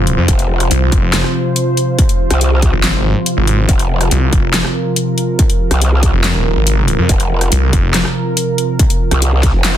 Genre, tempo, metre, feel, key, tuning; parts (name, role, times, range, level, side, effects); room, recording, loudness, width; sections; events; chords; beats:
heavy wobble dubstep; 141 BPM; 4/4; half-time; F minor; A4 = 439 Hz
lush unison pad; sustained chords; 0.0-9.8 s; C3 to C5; -18 LUFS; right 1 dB; chorus, sidechain pumping
snarling distorted saw bass; bass; 0.0-8.0 s; Eb1 to F2; -14 LUFS; equal; distortion, overdrive
dubstep drum kit; drums; 0.1-9.7 s; handclaps, hi-hat, rim click, snare drum; -18 LUFS; left 1 dB; small room ambience
growl bass; bass; 0.3-9.8 s; F1 to C2; -13 LUFS; equal; chorus, overdrive
electronic kick drum; drums; 0.3-9.5 s; -14 LUFS; equal; distortion, small room ambience
little or no reverb; dense, heavily limited modern master; -11 LUFS; side -11 dB against mid
0.0-9.8 A section
0.0 F5
| 0.28 0.71 1.14 1.56 | 1.99 2.41 2.84 3.26 | 3.69 4.11 4.54 4.96 | 5.39 5.82 6.24 6.67 | 7.09 7.52 7.94 8.37 | 8.79 9.22 9.64